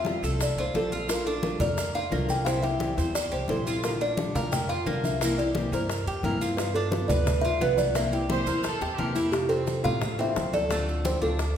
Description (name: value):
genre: latin, Cuban son and guajira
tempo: 175 BPM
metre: 4/4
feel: straight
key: F major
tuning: A4 = 439 Hz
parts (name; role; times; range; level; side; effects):
- kalimba; melody; 0.0-11.6 s; G4 to G5; -29 LUFS; left 1 dB; none
- nylon-string guitar; accompaniment; 0.0-11.4 s; C3 to F4; -31 LUFS; left 2 dB; none
- Cuban tres; arpeggios; 0.0-11.6 s; A3 to C5; -32 LUFS; right 4 dB; none
- upright bass; bass; 0.0-11.6 s; Bb1 to A2; -31 LUFS; equal; none
- congas; percussion; 0.0-11.6 s; none; -34 LUFS; equal; none
- bongos; percussion; 0.1-11.6 s; none; -37 LUFS; left 6 dB; none
- maracas; percussion; 0.1-11.6 s; none; -39 LUFS; right 4 dB; none
- dark chamber violin section; second line; 8.3-9.3 s; G4 to C5; -32 LUFS; right 3 dB; none
room: wet recital hall reverb, RT60 1.7 s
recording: recorded in a church or concert hall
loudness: -24 LUFS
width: side -9 dB against mid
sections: 0.0-9.3 A section; 9.3-11.6 B section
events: drum fill 8.8-9.3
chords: 0.0 Fadd9; 1.1 Bbmaj7; 2.5 C; 3.8 Bb6; 5.2 C7; 6.6 G7; 8.0 C7; 9.3 Fmaj7; 10.7 Dm7